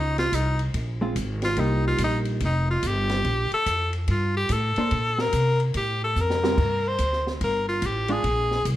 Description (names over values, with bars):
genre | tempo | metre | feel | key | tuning
jazz, small-group swing and bop | 144 BPM | 4/4 | swing 64% on 8ths | unclear | A4 = 440 Hz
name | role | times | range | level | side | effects
bright tenor saxophone | melody | 0.0-8.7 s | Eb4 to C5 | -25 LUFS | left 1 dB | plate reverb
upright bass | bass | 0.0-8.8 s | F1 to C3 | -26 LUFS | equal | none
open jazz drum kit | drums | 0.2-8.8 s | crash cymbal, hi-hat, kick drum, ride cymbal, snare drum | -32 LUFS | equal | none
vintage hollow-body jazz guitar | accompaniment | 1.0-8.2 s | G3 to C5 | -28 LUFS | right 1 dB | none
room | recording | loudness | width
light reverb | dark, warm production | -22 LUFS | side -14 dB against mid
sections
0.0-6.6 A section; 6.6-8.8 A section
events
tenor saxophone solo 0.0-8.8; drum fill 6.2-6.6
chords
0.0 Dbmaj7(no3); 1.6 Cm7; 2.4 Fsus2; 3.2 Bbmaj7sus2; 6.6 Gsus4; 8.2 Bb7(no3)